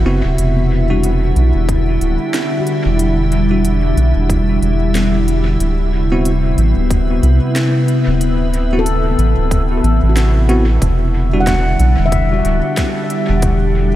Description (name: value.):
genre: ambient dub.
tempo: 92 BPM.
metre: 4/4.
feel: swing 59% on 16ths.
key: E minor.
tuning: A4 = 440 Hz.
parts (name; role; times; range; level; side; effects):
soft additive organ-like pad; sustained chords; 0.0-14.0 s; C3 to F#5; -17 LUFS; left 1 dB; ensemble chorus, built-in reverb.
handpan; arpeggios; 0.0-14.0 s; B3 to F#5; -23 LUFS; left 3 dB; dub echo.
round analog bass; bass; 0.0-14.0 s; D1 to C2; -14 LUFS; equal; none.
bell-like tine electric piano; stabs; 0.1-11.5 s; G3 to F#4; -24 LUFS; right 1 dB; lush chorus, dub echo.
organic electronic drum kit; drums; 0.4-13.6 s; hi-hat, snare drum; -27 LUFS; equal; overdrive, dub echo.
electronic kick drum; drums; 1.7-13.6 s; none; -19 LUFS; equal; overdrive.
room: light reverb, digital ambience.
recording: none.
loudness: -12 LUFS.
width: side -14 dB against mid.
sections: 0.0-10.8 A section; 10.8-14.0 B section.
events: none.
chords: 0.4 Em9; 5.6 D13; 10.8 Em9.